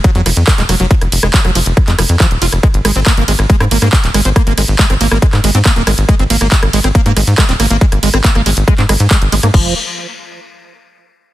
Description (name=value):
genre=psychedelic trance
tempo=139 BPM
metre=4/4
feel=straight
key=unclear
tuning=A4 = 436 Hz
part: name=liquid acid bass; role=riff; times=0.0-9.7 s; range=F3 to F4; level=-18 LUFS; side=right 2 dB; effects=chorus, auto-pan, sidechain pumping, digital delay
part: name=big-room dance drum kit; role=drums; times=0.0-9.6 s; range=crash cymbal, handclaps, hi-hat, ride cymbal, rim click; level=-16 LUFS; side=equal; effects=none
part: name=electronic kick drum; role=drums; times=0.0-9.6 s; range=none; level=-11 LUFS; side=equal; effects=none
part: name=tight sequencer bass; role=bass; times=0.2-9.7 s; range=Eb1 to Ab2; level=-13 LUFS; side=equal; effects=none
room=little or no reverb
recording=dense, heavily limited modern master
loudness=-9 LUFS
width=side -15 dB against mid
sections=0.0-9.5 A section; 9.5-11.3 B section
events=drop 0.0-9.5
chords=0.0 Ebmadd9 (rootless); 2.6 Ab5; 9.5 N.C.